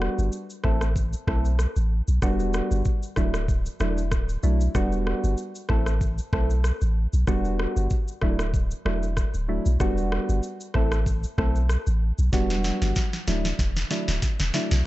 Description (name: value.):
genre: afrobeats.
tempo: 95 BPM.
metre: 4/4.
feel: swing 55% on 16ths.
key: E minor.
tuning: A4 = 439 Hz.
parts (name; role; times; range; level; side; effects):
soft electric-piano-like synth keys; accompaniment; 0.0-14.7 s; F#3 to A4; -29 LUFS; right 1 dB; chorus.
punchy sub bass; bass; 0.0-14.8 s; D1 to B1; -24 LUFS; equal; none.
afro-pop drum kit; drums; 0.0-14.8 s; kick drum, rim click, shaker, snare drum; -27 LUFS; equal; none.
room: digital ambience.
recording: dark, warm production, nothing above 8.0 kHz.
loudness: -22 LUFS.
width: side -17 dB against mid.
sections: 0.0-14.9 A section.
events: drum fill 12.3-14.9.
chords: 0.0 Em7; 0.6 Am; 2.2 Em7; 3.2 Dadd9; 4.8 Em7; 5.7 Am; 7.3 Em7; 8.2 Dadd9; 9.8 Em7; 10.8 Am; 12.3 Em7; 13.3 Dadd9.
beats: 0.33 0.96 1.59 | 2.22 2.85 3.49 4.12 | 4.75 5.38 6.01 6.64 | 7.28 7.91 8.54 9.17 | 9.80 10.43 11.06 11.70 | 12.33 12.96 13.59 14.22.